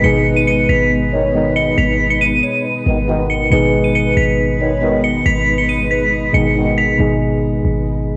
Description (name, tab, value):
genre	hip hop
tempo	138 BPM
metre	4/4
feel	half-time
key	G# minor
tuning	A4 = 440 Hz
part	dark detuned synth bell	melody	0.0-7.0 s	B6 to D#7	-20 LUFS	equal	chorus, phaser, tremolo, cassette tape
part	hollow clarinet-like synth lead	second line	0.0-6.1 s	B4 to D#5	-24 LUFS	equal	chorus, cassette tape, analog delay
part	soft electric-piano-like synth keys	accompaniment	0.0-8.2 s	B2 to G#4	-21 LUFS	equal	chorus, low-pass filter, cassette tape
part	granular cloud pad	sustained chords	0.0-7.0 s	G#3 to B4	-25 LUFS	equal	built-in reverb, cassette tape
part	warm 808-style bass	bass	0.0-8.2 s	G#1	-22 LUFS	equal	none
part	mellow brass ensemble	stabs	1.1-7.0 s	G#2 to D#3	-24 LUFS	equal	cassette tape, analog delay
room	light reverb, digital ambience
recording	home recording on cassette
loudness	-15 LUFS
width	mono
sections	0.0-7.0 A section; 7.0-8.2 B section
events	filter sweep on synth keys 7.0-8.2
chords	0.0 G#m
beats	| 0.04 0.47 0.91 1.34 | 1.78 2.21 2.65 3.08 | 3.52 3.95 4.39 4.82 | 5.26 5.69 6.12 6.56 | 7.00 7.43 7.86